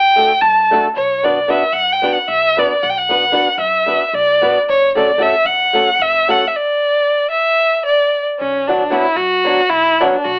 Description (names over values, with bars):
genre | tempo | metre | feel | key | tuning
balkan folk, Balkan wedding band | 226 BPM (eighths) | 7/8 | straight | unclear | A4 = 439 Hz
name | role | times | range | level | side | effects
warm violin | melody | 0.0-10.4 s | C#4 to A5 | -15 LUFS | equal | cassette tape
upright bass | bass | 0.0-10.4 s | F#1 to F#2 | -41 LUFS | equal | none
flamenco guitar | accompaniment | 0.2-10.2 s | F#3 to B4 | -20 LUFS | equal | cassette tape
room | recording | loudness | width
moderate small room reverb, RT60 0.5 s | home recording on cassette, telephone sound | -15 LUFS | mono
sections
0.0-8.4 A section; 8.4-10.4 A section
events
none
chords
0.0 D; 1.0 Bm; 4.7 F#m; 6.5 N.C.; 8.4 Bm